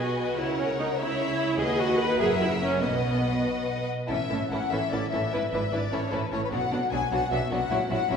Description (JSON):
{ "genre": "quick classical-period movement for string orchestra", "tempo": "99 BPM (dotted quarters)", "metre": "6/8", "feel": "rubato", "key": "B major, A major from 4.1 s", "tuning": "A4 = 439 Hz", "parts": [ { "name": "warm chamber violin section", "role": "melody", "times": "0.0-8.2 s", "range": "B4 to G#5", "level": "-31 LUFS", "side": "left 5 dB", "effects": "none" }, { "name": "rich symphonic violin section", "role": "second line", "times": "0.0-8.2 s", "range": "D4 to E5", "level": "-30 LUFS", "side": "left 2 dB", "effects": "none" }, { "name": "rich symphonic viola section", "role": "accompaniment", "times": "0.0-8.2 s", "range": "E3 to B4", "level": "-28 LUFS", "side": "right 1 dB", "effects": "none" }, { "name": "clear symphonic double bass section", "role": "bass", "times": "0.0-8.2 s", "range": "F#1 to D#2", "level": "-34 LUFS", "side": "right 2 dB", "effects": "none" }, { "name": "rich studio cello section", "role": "bass", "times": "0.0-8.2 s", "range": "D#2 to C#3", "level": "-34 LUFS", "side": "right 2 dB", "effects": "none" } ], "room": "wet concert hall reverb, RT60 1.7 s", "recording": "recorded in a church or concert hall", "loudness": "-24 LUFS", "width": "side -6 dB against mid", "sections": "0.0-4.1 A section; 4.1-8.2 B section", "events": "none", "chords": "0.4 F#7/C#; 1.6 B/D#; 2.2 F#7; 2.8 B; 4.1 A; 5.3 E7/G#; 5.9 A; 6.5 Bm" }